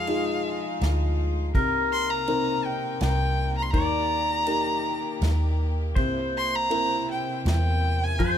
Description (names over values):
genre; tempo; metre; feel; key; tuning
acoustic folk-pop ballad; 81 BPM; 3/4; straight; unclear; A4 = 440 Hz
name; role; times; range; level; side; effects
rich violin; melody; 0.0-8.4 s; F5 to C6; -27 LUFS; right 1 dB; none
pedal steel guitar; second line; 0.0-8.4 s; Ab4 to D5; -31 LUFS; left 2 dB; none
warm upright piano; accompaniment; 0.0-8.4 s; C3 to Bb4; -30 LUFS; left 2 dB; none
rich chamber string section; sustained chords; 0.0-8.4 s; C3 to G4; -35 LUFS; left 3 dB; none
vintage muted fingered electric bass; bass; 0.0-8.4 s; C2 to F2; -26 LUFS; equal; none
unplugged drum kit; drums; 0.1-8.4 s; kick drum, ride cymbal, snare drum; -30 LUFS; equal; none
room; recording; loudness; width
light reverb; close, detailed microphones; -22 LUFS; side -9 dB against mid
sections
0.0-8.4 A section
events
none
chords
0.0 Fm7; 1.5 Cm7; 3.7 Eb; 6.0 C7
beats
0.07 0.81 | 1.54 2.28 3.01 | 3.74 4.48 5.22 | 5.97 6.71 7.46 | 8.20